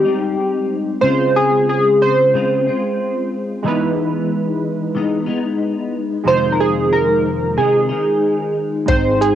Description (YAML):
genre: indie pop, bedroom pop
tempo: 92 BPM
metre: 4/4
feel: straight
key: unclear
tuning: A4 = 437 Hz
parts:
  - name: chorused retro synth keys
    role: melody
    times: 0.0-9.3 s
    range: G4 to C5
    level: -16 LUFS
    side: right 1 dB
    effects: tremolo, analog chorus, cassette tape, plate reverb, tape echo
  - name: semi-hollow electric guitar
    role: accompaniment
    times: 0.0-9.3 s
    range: F2 to F4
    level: -20 LUFS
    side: left 5 dB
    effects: ensemble chorus, warbly pitch drift, cassette tape
  - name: warm analog keys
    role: accompaniment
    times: 0.0-9.3 s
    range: Ab3 to G5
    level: -24 LUFS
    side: right 7 dB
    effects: chorus, phaser, cassette tape
  - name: fingered electric bass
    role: bass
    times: 8.9-9.3 s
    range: Ab1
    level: -22 LUFS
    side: right 1 dB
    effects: tube saturation
  - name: soft vintage rhythm box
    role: drums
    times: 8.9-9.3 s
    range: hi-hat, kick drum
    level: -19 LUFS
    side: right 1 dB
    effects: cassette tape
room: wet small room reverb, RT60 0.5 s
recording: home recording on cassette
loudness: -15 LUFS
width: side -10 dB against mid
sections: 0.0-9.3 A section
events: none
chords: 0.0 Abmaj7; 1.0 Dbmaj7; 3.6 Emaj7; 6.3 Fm7